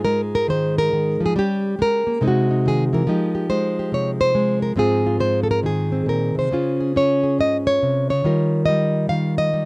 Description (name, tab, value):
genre	solo jazz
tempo	139 BPM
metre	4/4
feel	swing 65% on 8ths, rubato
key	Ab major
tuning	A4 = 440 Hz
part	nylon-string guitar	solo	0.0-9.7 s	Ab2 to F5	-17 LUFS	equal	none
room	little or no reverb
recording	dry, close 1970s-style studio recording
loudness	-17 LUFS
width	side -28 dB against mid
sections	0.0-9.7 A section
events	none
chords	0.0 Absus2; 1.4 Gdim; 2.2 Caug; 3.1 Fm11; 4.8 Ab69; 6.5 Dbmaj7; 8.3 Eb9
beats	0.04 0.48 0.92 | 1.35 1.78 2.22 2.65 | 3.08 3.50 3.93 4.35 | 4.78 5.21 5.64 6.08 | 6.51 6.96 7.39 7.82 | 8.25 8.68 9.11 9.54